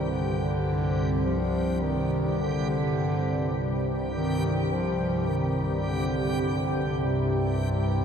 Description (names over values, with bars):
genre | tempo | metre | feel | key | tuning
dark ambient drone | 52 BPM | 4/4 | straight | C minor | A4 = 440 Hz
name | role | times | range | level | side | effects
mellow bass clarinet | melody | 0.0-8.0 s | C3 to F3 | -29 LUFS | equal | ping-pong delay
deep dark ambient pad | sustained chords | 0.0-8.0 s | C4 to D5 | -31 LUFS | right 1 dB | chorus, built-in reverb
dark detuned synth bell | arpeggios | 0.0-8.0 s | none | barely audible | none | none
organ-like drone | drone | 0.0-8.0 s | C2 to G2 | -29 LUFS | equal | ensemble chorus, built-in reverb
backwards swelling texture | texture | 0.0-8.0 s | G4 | -35 LUFS | right 1 dB | built-in reverb
room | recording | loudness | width
wet huge ambient reverb, RT60 8.7 s | in a vast, echoing space | -24 LUFS | side -7 dB against mid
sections
0.0-8.0 A section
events
none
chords
0.0 Cmadd9